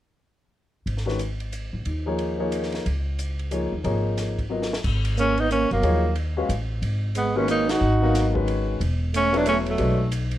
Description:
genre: modal jazz.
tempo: 182 BPM.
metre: 3/4.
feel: swing 62% on 8ths.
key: G# dorian.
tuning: A4 = 441 Hz.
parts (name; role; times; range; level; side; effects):
upright bass; bass; 0.9-10.4 s; E1 to D#2; -25 LUFS; equal; none.
compact cocktail drum kit; drums; 0.9-10.4 s; crash cymbal, hi-hat, kick drum, ride cymbal, snare drum; -34 LUFS; equal; none.
warm grand piano; accompaniment; 1.1-10.0 s; D#3 to E#5; -26 LUFS; left 3 dB; none.
warm tenor saxophone; melody; 5.2-10.1 s; A3 to F#4; -23 LUFS; equal; none.
bright trombone; second line; 5.2-10.1 s; F#3 to D#4; -26 LUFS; right 4 dB; none.
room: moderate studio reverb, RT60 0.6 s.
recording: worn, warbling old tape, cassette tape, warbly pitch drift.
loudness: -21 LUFS.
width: side -13 dB against mid.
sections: 0.9-4.8 A section; 4.8-10.4 B section.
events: drum fill 4.5-4.8; band accent 7.6.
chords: 0.9 G#sus4; 4.8 G#9sus4; 8.8 Esus4.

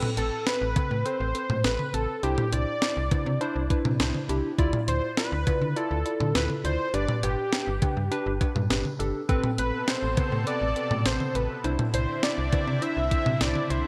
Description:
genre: synth-pop.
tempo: 102 BPM.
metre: 4/4.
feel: straight.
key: A minor.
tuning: A4 = 440 Hz.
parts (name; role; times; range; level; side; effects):
warm analog keys; accompaniment; 0.0-13.9 s; C4 to D5; -34 LUFS; equal; chorus.
clean 12-bit digital drum machine; drums; 0.0-13.8 s; cowbell, hi-hat, kick drum, snare drum, toms; -30 LUFS; equal; none.
unison lead; melody; 0.2-13.9 s; G4 to E5; -32 LUFS; equal; digital delay.
slap-like FM bass; bass; 0.2-13.8 s; G1 to D3; -31 LUFS; equal; none.
lush unison pad; sustained chords; 9.3-13.9 s; B2 to A4; -37 LUFS; equal; chorus.
room: moderate plate reverb, RT60 2.9 s.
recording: bright 1980s-style digital production.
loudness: -26 LUFS.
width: mono.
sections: 0.0-13.9 A section.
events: none.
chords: 0.0 Amadd9; 2.2 Cadd9; 4.6 Dmadd9; 6.9 G; 9.3 Amadd9; 11.6 Cadd9.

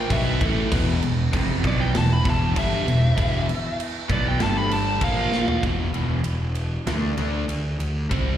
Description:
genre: hard rock.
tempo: 97 BPM.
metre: 4/4.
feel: straight.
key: E phrygian.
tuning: A4 = 442 Hz.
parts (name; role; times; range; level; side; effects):
biting lead guitar; melody; 0.0-5.6 s; D5 to B5; -28 LUFS; equal; overdrive, plate reverb, slapback echo, tape echo.
warm analog pad; sustained chords; 0.0-5.6 s; E3 to C5; -35 LUFS; equal; none.
cranked stack guitar; riff; 0.0-8.4 s; E2 to D4; -27 LUFS; left 7 dB; overdrive, slapback echo.
overdriven electric guitar; riff; 0.0-8.4 s; E2 to D4; -26 LUFS; right 7 dB; phaser, slapback echo.
fuzz picked electric bass; bass; 0.0-8.4 s; E1 to D2; -25 LUFS; equal; overdrive.
big rock drum kit; drums; 0.1-8.3 s; crash cymbal, kick drum, ride cymbal, snare drum, toms; -26 LUFS; equal; none.
room: light reverb.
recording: live gig heard through the venue's PA, recital hall reverb.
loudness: -20 LUFS.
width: side -10 dB against mid.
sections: 0.0-5.6 A section; 5.6-8.4 B section.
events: lead electric guitar solo 0.0-5.6; drum fill 5.3-5.6.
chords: 0.1 Em; 4.4 G5; 5.0 A#5; 5.6 E5; 6.9 D5.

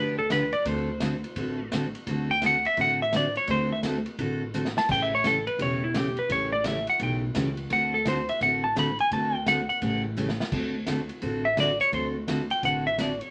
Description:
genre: country, western swing.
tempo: 170 BPM.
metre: 4/4.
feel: swing 64% on 8ths.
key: D mixolydian.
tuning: A4 = 437 Hz.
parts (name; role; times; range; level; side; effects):
clean lap steel guitar; melody; 0.0-13.3 s; E4 to B5; -27 LUFS; equal; none.
picked steel-string acoustic guitar; accompaniment; 0.0-13.1 s; C#3 to A4; -33 LUFS; equal; none.
upright bass; bass; 0.0-13.2 s; E1 to D2; -36 LUFS; equal; none.
vintage drum kit; drums; 0.3-13.3 s; crash cymbal, hi-hat, kick drum, ride cymbal, snare drum; -38 LUFS; equal; none.
room: moderate studio reverb, RT60 0.5 s.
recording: none.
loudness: -26 LUFS.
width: mono.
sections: 0.0-10.5 A section; 10.5-13.3 A section.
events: electric slide guitar solo 0.0-10.5, 10.5-13.3; drum fill 4.5-4.9, 10.2-10.5.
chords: 0.0 G7; 0.7 D7; 4.9 A7; 7.7 D7; 9.8 A7; 10.5 D7.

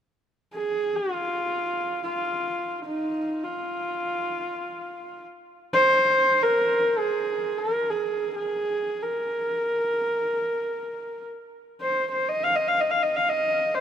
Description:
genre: mongolian traditional.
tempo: free time.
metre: none.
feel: none.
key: F yu mode.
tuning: A4 = 442 Hz.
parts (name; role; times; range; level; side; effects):
warm horsehead fiddle; melody; 0.5-13.8 s; Eb4 to F5; -23 LUFS; equal; none.
room: moderate huge ambient reverb, RT60 4.1 s.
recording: minimal, uncompressed stereo recording.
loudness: -23 LUFS.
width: side -9 dB against mid.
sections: 0.2-13.8 A section.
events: none.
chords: none.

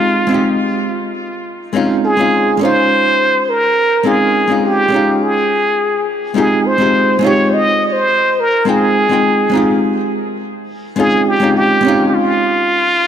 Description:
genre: sunset chillout.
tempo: 104 BPM.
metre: 4/4.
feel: straight.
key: F minor.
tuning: A4 = 440 Hz.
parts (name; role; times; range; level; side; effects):
trumpet with plunger mute; melody; 0.0-13.1 s; F4 to Eb5; -14 LUFS; equal; tape echo.
archtop guitar, miked and amplified; accompaniment; 0.0-13.1 s; Ab3 to G5; -16 LUFS; equal; auto-pan, digital delay.
room: moderate plate reverb, RT60 2.6 s.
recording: none.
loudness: -11 LUFS.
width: side -9 dB against mid.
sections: 0.0-13.1 A section.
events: none.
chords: 0.0 Fm9; 1.7 Dbmaj9; 6.4 Fm9; 11.0 Dbmaj9.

